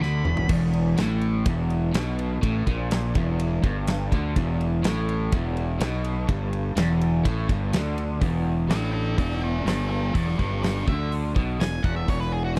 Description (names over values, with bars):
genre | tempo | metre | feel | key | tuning
blues rock power trio and southern rock | 124 BPM | 4/4 | straight | unclear | A4 = 442 Hz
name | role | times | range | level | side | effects
octave-fuzz lead guitar | melody | 0.0-0.5, 8.7-12.6 s | F#4 to B5 | -33 LUFS | equal | distortion, tape echo
crunchy overdriven guitar | riff | 0.0-12.6 s | E2 to D3 | -29 LUFS | equal | none
fuzz fingered electric bass | bass | 0.0-12.6 s | E1 to D2 | -29 LUFS | equal | overdrive
huge arena drum kit | drums | 0.0-12.6 s | crash cymbal, hi-hat, kick drum, ride cymbal, snare drum, toms | -29 LUFS | equal | none
room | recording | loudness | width
little or no reverb | dry, close 1970s-style studio recording | -25 LUFS | mono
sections
0.5-8.2 A section; 8.2-12.6 B section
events
drum fill 0.0-0.5; lead electric guitar solo 8.2-12.6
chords
0.5 E5; 8.2 E